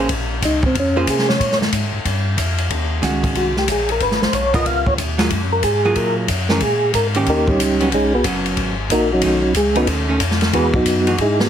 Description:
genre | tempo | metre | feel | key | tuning
soul jazz organ trio | 184 BPM | 4/4 | swing 64% on 8ths | unclear | A4 = 437 Hz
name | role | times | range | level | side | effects
archtop guitar, miked and amplified | accompaniment | 0.0-11.2 s | Eb3 to C5 | -21 LUFS | right 3 dB | none
tonewheel organ | bass | 0.0-11.5 s | Gb1 to C3 | -23 LUFS | equal | stopped rotary speaker
open jazz drum kit | drums | 0.1-11.4 s | hi-hat, kick drum, ride cymbal, snare drum | -20 LUFS | left 1 dB | none
percussive tonewheel organ | melody | 0.5-11.5 s | Gb3 to F5 | -17 LUFS | equal | slow rotary speaker, chorus vibrato
room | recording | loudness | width
light reverb | heavily compressed radio sound | -15 LUFS | side -9 dB against mid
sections
0.0-2.7 A section; 2.7-11.5 A section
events
tonewheel organ solo 0.0-11.5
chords
0.1 Bbm9; 2.7 Ebm7; 4.0 Abmadd9; 4.7 Db13; 5.3 Gbmaj9; 6.6 Absus24; 7.3 Eb7; 7.9 Abm11; 9.2 B9; 10.5 Emaj9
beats
| 0.10 0.42 0.75 1.07 | 1.40 1.72 2.05 2.38 | 2.70 3.03 3.35 3.68 | 4.00 4.33 4.66 4.98 | 5.31 5.63 5.96 6.29 | 6.61 6.94 7.26 7.59 | 7.92 8.24 8.57 8.90 | 9.22 9.55 9.88 10.20 | 10.53 10.86 11.18

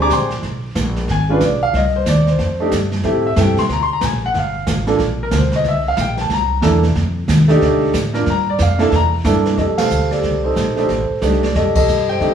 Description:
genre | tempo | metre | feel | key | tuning
jazz piano trio | 184 BPM | 4/4 | swing 63% on 8ths | F mixolydian | A4 = 440 Hz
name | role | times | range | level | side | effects
warm grand piano | melody | 0.0-12.3 s | G#3 to D6 | -17 LUFS | equal | none
upright bass | bass | 0.0-12.3 s | G1 to C3 | -18 LUFS | equal | none
jazz brush drum kit | drums | 0.1-12.3 s | brushed snare drum, hi-hat, kick drum, ride cymbal, snare drum | -23 LUFS | right 2 dB | none
room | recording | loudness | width
moderate stone room reverb, RT60 1.2 s | band playing live in one room, studio reverb | -14 LUFS | side -8 dB against mid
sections
0.0-9.6 A section; 9.6-12.3 B section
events
grand piano solo 0.0-9.6; band accent 9.7, 11.7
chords
0.4 Bm6; 1.7 F7sus2; 3.0 Am7; 3.7 Bb7; 4.3 Gm7; 5.7 C13; 7.0 F13; 8.3 Gm7; 8.9 Em7b5; 9.6 F13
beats
0.11 | 0.43 0.76 1.08 1.41 | 1.74 2.06 2.39 2.71 | 3.04 3.37 3.69 4.02 | 4.34 4.67 5.00 5.33 | 5.65 5.98 6.30 6.63 | 6.96 7.29 7.61 7.94 | 8.27 8.60 8.92 9.25 | 9.58 9.90 10.23 10.56 | 10.89 11.22 11.54 11.87 | 12.20

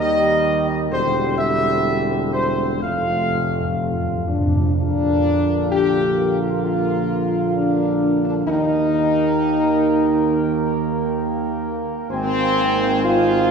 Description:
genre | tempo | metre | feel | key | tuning
classical, ceremonial fanfare | 65 BPM | 4/4 | straight | unclear | A4 = 438 Hz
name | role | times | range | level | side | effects
dark trumpet section | melody | 0.0-13.5 s | Bb4 to Ab5 | -24 LUFS | equal | none
clear French horn section | sustained chords | 0.0-13.5 s | Bb3 to G4 | -20 LUFS | left 1 dB | none
warm trombone section | sustained chords | 0.0-13.5 s | C3 to Bb3 | -26 LUFS | right 3 dB | none
mellow tuba | bass | 0.0-13.5 s | E1 to Eb2 | -24 LUFS | right 2 dB | none
timpani | percussion | 2.8-4.7 s | F2 | -23 LUFS | equal | none
room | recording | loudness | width
wet concert hall reverb, RT60 2.1 s | heard from further back in the room | -17 LUFS | side -6 dB against mid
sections
0.0-4.7 A section; 4.7-13.5 B section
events
timpani fill 2.8-4.7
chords
0.0 Eb; 0.9 Cadd9/E; 2.8 F; 4.7 Bb; 8.5 Eb; 12.1 Ab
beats
0.00 | 0.92 1.85 2.82 3.78 | 4.75 5.70 6.63 7.55 | 8.46 9.37 10.28 11.19 | 12.10 13.03

